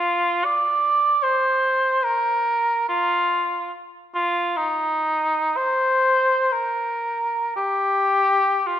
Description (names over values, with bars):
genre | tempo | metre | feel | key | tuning
classical, free, expressive piece for unaccompanied cor anglais | free time | none | none | unclear | A4 = 441 Hz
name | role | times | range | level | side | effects
mellow cor anglais | solo | 0.0-8.8 s | Eb4 to D5 | -19 LUFS | equal | none
room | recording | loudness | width
moderate scoring stage reverb, RT60 1.9 s | none | -19 LUFS | side -10 dB against mid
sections
0.0-8.8 A section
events
none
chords
none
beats
free time